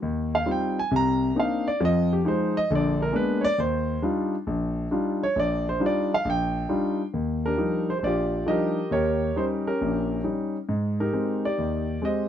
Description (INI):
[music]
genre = solo jazz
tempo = 135 BPM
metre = 4/4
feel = swing 67% on 8ths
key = Eb major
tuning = A4 = 441 Hz
[part]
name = warm grand piano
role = solo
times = 0.0-12.3 s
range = Bb1 to Bb5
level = -23 LUFS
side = equal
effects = none
[sound]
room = light reverb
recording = dry, close 1970s-style studio recording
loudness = -23 LUFS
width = side -10 dB against mid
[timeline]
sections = 0.0-7.1 A section; 7.1-12.3 B section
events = grand piano solo 0.0-7.1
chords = 0.0 Eb69; 0.9 Cm9; 1.8 Fm7; 2.7 Bb7b9; 3.6 Ebmaj9; 8.9 Eb7; 10.7 Abmaj7